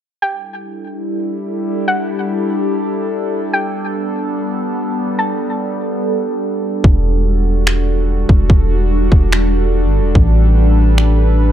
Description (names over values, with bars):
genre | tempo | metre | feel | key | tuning
hip hop, atmospheric cloud-rap | 145 BPM | 4/4 | half-time | E minor | A4 = 440 Hz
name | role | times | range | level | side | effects
soft round pluck | melody | 0.2-6.4 s | F#5 to A5 | -20 LUFS | left 1 dB | chorus, low-pass filter, digital delay
warbly tape-like pad | sustained chords | 0.6-11.5 s | G3 to B4 | -18 LUFS | equal | chorus, built-in reverb, phaser, sidechain pumping
long sustained 808-style bass | bass | 6.8-11.5 s | E1 to A1 | -13 LUFS | equal | none
trap drum kit | drums | 6.8-11.1 s | finger snaps, kick drum | -12 LUFS | equal | none
room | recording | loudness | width
little or no reverb | dark, warm production | -13 LUFS | side -11 dB against mid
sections
0.2-6.8 A section; 6.8-11.5 B section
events
hi-hats muted 6.8-11.5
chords
0.2 Em11; 3.5 A9sus4; 6.8 Em11; 10.2 A9sus4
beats
| 0.22 0.64 1.05 1.46 | 1.88 2.29 2.70 3.12 | 3.53 3.94 4.36 4.77 | 5.19 5.60 6.01 6.43 | 6.84 7.26 7.67 8.08 | 8.50 8.91 9.32 9.74 | 10.15 10.57 10.98 11.39